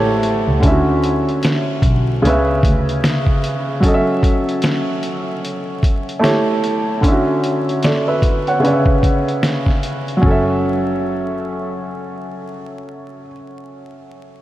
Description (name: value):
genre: lo-fi hip hop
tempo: 75 BPM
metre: 4/4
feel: swing 59% on 16ths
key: F# minor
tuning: A4 = 440 Hz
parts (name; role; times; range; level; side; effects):
- felt-muted upright piano; accompaniment; 0.0-14.4 s; C#3 to A5; -17 LUFS; equal; cassette tape, low-pass filter
- dark double bass; bass; 0.0-3.0, 10.2-13.3 s; F#1 to D2; -20 LUFS; equal; none
- lo-fi sampler-style drum kit; drums; 0.2-10.4 s; hi-hat, kick drum, snare drum; -18 LUFS; equal; vintage 12-bit sampler grit
room: moderate huge ambient reverb, RT60 6.6 s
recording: dreamy mix soaked in reverb, vinyl crackle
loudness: -14 LUFS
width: side -14 dB against mid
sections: 0.0-10.2 A section; 10.2-13.4 B section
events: none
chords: 0.0 A7; 0.6 Dmaj9; 2.2 C#m7; 3.8 F#m7; 6.2 A7; 7.0 Dmaj9; 8.6 C#m7; 10.2 F#m7